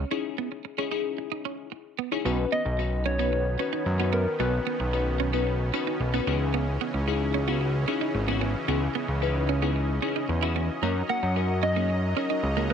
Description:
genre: pop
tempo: 112 BPM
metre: 4/4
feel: straight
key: unclear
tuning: A4 = 440 Hz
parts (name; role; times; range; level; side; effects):
- clean electric guitar; riff; 0.0-12.7 s; A#3 to E4; -32 LUFS; right 18 dB; analog chorus
- fat analog bass; bass; 0.0-12.7 s; G#1 to F#2; -26 LUFS; equal; none
- glassy digital keys; accompaniment; 0.1-12.7 s; C#4 to B4; -31 LUFS; left 11 dB; chorus
- soft supersaw; sustained chords; 2.3-12.7 s; C#3 to A#5; -34 LUFS; right 2 dB; none
- soft struck synth lead; melody; 2.5-4.9, 11.1-12.7 s; A#4 to F#5; -30 LUFS; left 1 dB; chorus, tremolo, tape echo
room: moderate spring reverb, RT60 1.3 s, digital ambience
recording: 1960s-style stereo with parts hard left and right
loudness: -24 LUFS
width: side -8 dB against mid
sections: 0.0-2.3 A section; 2.3-12.7 B section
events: break 0.1-2.3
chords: 0.0 C#madd9; 2.3 Badd9; 6.3 C#madd9; 10.8 F#6

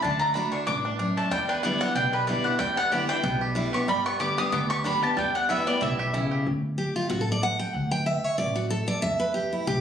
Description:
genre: bluegrass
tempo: 187 BPM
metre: 4/4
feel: swing 55% on 8ths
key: unclear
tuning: A4 = 440 Hz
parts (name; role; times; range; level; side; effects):
- bluegrass banjo; melody; 0.0-6.5 s; G3 to G4; -30 LUFS; right 4 dB; none
- mandolin; melody; 0.0-6.3 s; B4 to D#6; -26 LUFS; left 1 dB; none
- picked steel-string acoustic guitar; accompaniment; 0.0-9.8 s; E2 to G5; -28 LUFS; equal; none
- upright bass; bass; 0.0-9.8 s; A1 to G2; -31 LUFS; equal; none
room: moderate studio ambience, RT60 0.5 s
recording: recorded on a phone in the room, studio reverb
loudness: -23 LUFS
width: side -8 dB against mid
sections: 0.0-6.5 A section; 6.5-9.8 A section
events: mandolin solo 0.0-6.5; steel-string acoustic guitar solo 6.5-9.8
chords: 0.0 D; 1.3 Em7; 3.9 G; 5.2 Em; 6.5 D5; 9.0 E5

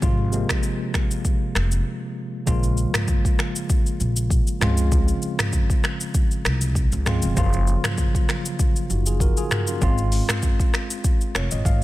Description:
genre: afrobeats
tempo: 98 BPM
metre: 4/4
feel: swing 55% on 16ths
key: Bb minor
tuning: A4 = 440 Hz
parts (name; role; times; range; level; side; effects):
- tine electric piano; accompaniment; 0.0-11.8 s; C3 to F5; -27 LUFS; equal; fast stereo tremolo
- upright bass; bass; 0.0-11.8 s; F1 to Db2; -22 LUFS; equal; none
- afro-pop drum kit; drums; 0.0-11.8 s; finger snaps, hi-hat, kick drum, rim click, shaker, toms; -21 LUFS; equal; none
room: digital ambience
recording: none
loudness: -19 LUFS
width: side -17 dB against mid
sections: 0.0-2.5 A section; 2.5-11.8 B section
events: break 1.9-2.5; tine electric piano fill 11.0-11.8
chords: 0.0 Fm/Ab; 2.5 Bbm7; 4.6 Dbmaj7; 7.4 Gbmaj7; 9.8 Fm/Ab

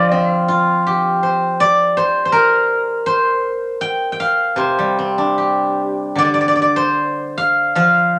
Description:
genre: chinese traditional, Chinese solo plucked strings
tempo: 74-85 BPM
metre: 4/4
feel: rubato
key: C shang mode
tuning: A4 = 440 Hz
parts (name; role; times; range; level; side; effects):
- steel-string zither; solo; 0.0-8.2 s; C3 to G5; -16 LUFS; equal; none
room: moderate studio ambience, RT60 0.5 s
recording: none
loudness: -16 LUFS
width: mono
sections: 0.0-8.2 A section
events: none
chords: none

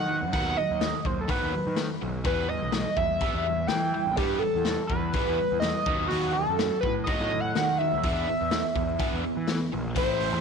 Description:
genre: indie rock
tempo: 125 BPM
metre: 4/4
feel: straight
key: E harmonic minor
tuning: A4 = 440 Hz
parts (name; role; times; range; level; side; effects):
- overdriven synth lead; melody; 0.0-10.4 s; F#4 to G5; -27 LUFS; right 1 dB; distortion, chorus, phaser, tape echo
- crunchy overdriven guitar; riff; 0.0-10.4 s; A2 to E4; -32 LUFS; right 1 dB; none
- fuzz picked electric bass; bass; 0.0-10.4 s; A1 to E3; -32 LUFS; right 1 dB; overdrive
- raw garage drum kit; drums; 0.3-10.3 s; hi-hat, kick drum, snare drum; -32 LUFS; left 3 dB; none
room: light reverb, small room reverb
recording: 1960s-style stereo, lossy compression artefacts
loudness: -24 LUFS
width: side -6 dB against mid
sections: 0.0-10.0 A section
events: none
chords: 0.0 B/D#; 2.3 Em; 5.9 B/D#; 8.0 E5

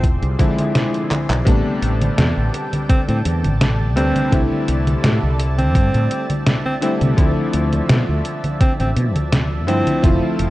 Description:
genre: vaporwave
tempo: 84 BPM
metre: 4/4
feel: swing 53% on 16ths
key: A minor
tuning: A4 = 438 Hz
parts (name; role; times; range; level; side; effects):
- bright alto saxophone; melody; 0.0-10.1 s; C4; -25 LUFS; right 1 dB; tape echo
- clear electric grand piano; accompaniment; 0.0-10.5 s; C3 to B4; -22 LUFS; left 1 dB; analog chorus, tape echo
- lush unison pad; sustained chords; 0.0-10.5 s; F3 to C6; -30 LUFS; right 1 dB; chorus
- mellow fretless electric bass; bass; 0.0-10.5 s; E1 to C3; -19 LUFS; equal; wide subtle chorus
- detuned 8-bit digital drum machine; drums; 0.0-10.5 s; congas, handclaps, hi-hat, snare drum; -21 LUFS; equal; vintage 12-bit sampler grit
- electronic kick drum; drums; 0.0-10.2 s; none; -16 LUFS; equal; vintage 12-bit sampler grit
room: light reverb, digital ambience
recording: dark, warm production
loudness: -15 LUFS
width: side -17 dB against mid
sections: 0.0-1.5 A section; 1.5-10.5 B section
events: kick drops out 0.8-1.5; drum fill 1.1-1.5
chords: 0.0 E7b9b13; 1.5 Am11; 4.3 C69; 7.2 Dm9

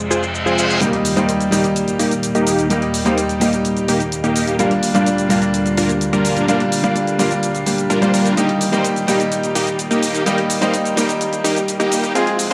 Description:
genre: EDM, festival progressive house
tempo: 127 BPM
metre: 4/4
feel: straight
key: Eb major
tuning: A4 = 439 Hz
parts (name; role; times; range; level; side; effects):
- bright grand piano; accompaniment; 0.0-12.5 s; G3 to Ab4; -21 LUFS; equal; dub echo
- lush unison pad; sustained chords; 0.0-12.5 s; D2 to Ab3; -27 LUFS; equal; chorus
- reverse cymbal and riser; sound effects; 0.0-0.8, 11.7-12.5 s; none; -27 LUFS; equal; none
- dense compressed supersaw; riff; 0.1-12.5 s; G3 to D5; -22 LUFS; equal; low-pass filter, dub echo
- electronic shaker and hi-hat; drums; 0.1-12.5 s; none; -27 LUFS; equal; low-pass filter on perc, low-pass filter on hats
room: moderate lush hall reverb, RT60 2.3 s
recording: dark, warm production, high-pass filter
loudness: -17 LUFS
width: mono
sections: 0.8-12.5 A section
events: reverse cymbal 0.0-0.8; build-up 0.8-12.5; filter sweep on supersaw synth 0.8-12.5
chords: 0.0 Fm; 0.8 Eb; 4.6 Bb6/D; 8.4 Eb

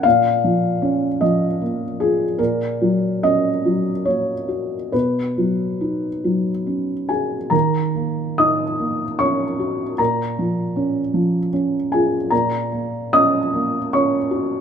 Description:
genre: neoclassical minimalist piano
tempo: 68-79 BPM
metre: 3/4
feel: rubato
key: Eb minor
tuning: A4 = 440 Hz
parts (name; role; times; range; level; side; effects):
- felt-muted upright piano; solo; 0.0-14.6 s; Bb2 to Eb6; -17 LUFS; equal; none
room: light reverb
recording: minimal, uncompressed stereo recording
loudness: -18 LUFS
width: side -7 dB against mid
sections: 0.0-7.5 A section; 7.5-14.6 A section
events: none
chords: 0.0 Bbm; 2.4 Gb/Bb; 4.9 Badd9; 7.5 Ebm7; 10.0 Bbm; 12.3 Gb/Bb

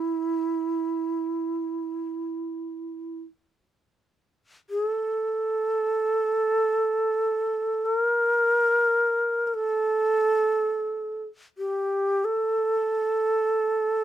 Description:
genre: japanese traditional, Japanese chamber music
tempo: free time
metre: none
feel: none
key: unclear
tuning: A4 = 440 Hz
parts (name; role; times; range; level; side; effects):
- mellow shakuhachi; solo; 0.0-14.0 s; E4 to Bb4; -23 LUFS; right 1 dB; none
room: light reverb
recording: none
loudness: -23 LUFS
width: side -12 dB against mid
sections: 0.0-14.0 A section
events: none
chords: none

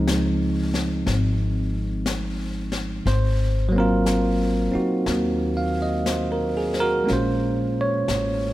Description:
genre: jazz ballad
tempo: 60 BPM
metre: 4/4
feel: swing 69% on 8ths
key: unclear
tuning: A4 = 441 Hz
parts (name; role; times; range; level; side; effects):
- bell-like tine electric piano; accompaniment; 0.0-8.5 s; F3 to F5; -22 LUFS; right 1 dB; none
- upright bass; bass; 0.0-8.5 s; Ab1 to Eb2; -25 LUFS; left 1 dB; none
- jazz brush drum kit; drums; 0.1-8.5 s; brushed snare drum, hi-hat, snare drum; -32 LUFS; left 3 dB; none
room: light reverb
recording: none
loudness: -20 LUFS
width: side -15 dB against mid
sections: 0.0-7.1 A section; 7.1-8.5 B section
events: none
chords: 0.0 Dbmaj9; 3.0 Ab13; 7.1 Bbm7

